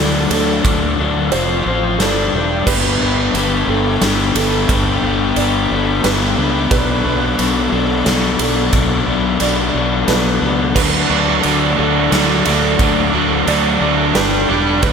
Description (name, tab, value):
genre	post-rock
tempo	89 BPM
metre	3/4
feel	straight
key	unclear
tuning	A4 = 440 Hz
part	sweeping resonant pad	sustained chords	0.0-14.9 s	F4 to G6	-26 LUFS	right 3 dB	chorus
part	felt-muted upright piano	arpeggios	0.0-14.9 s	A4 to D5	-24 LUFS	right 7 dB	analog delay
part	crunchy overdriven guitar	riff	0.0-14.9 s	B2 to D5	-17 LUFS	left 6 dB	none
part	fuzz fingered electric bass	bass	0.0-14.9 s	E1 to D2	-21 LUFS	right 1 dB	overdrive
part	big rock drum kit	drums	0.3-14.9 s	crash cymbal, kick drum, ride cymbal, snare drum	-20 LUFS	right 2 dB	none
part	distorted electric guitar	riff	10.7-14.9 s	D3 to D5	-17 LUFS	right 11 dB	distortion
room	wet lush hall reverb, RT60 2.3 s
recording	big arena sound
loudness	-13 LUFS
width	side -6 dB against mid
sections	0.0-14.9 A section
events	none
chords	0.0 D; 1.3 F5; 2.0 G5; 2.7 Gadd9; 6.7 Bm7; 10.8 D; 14.1 G5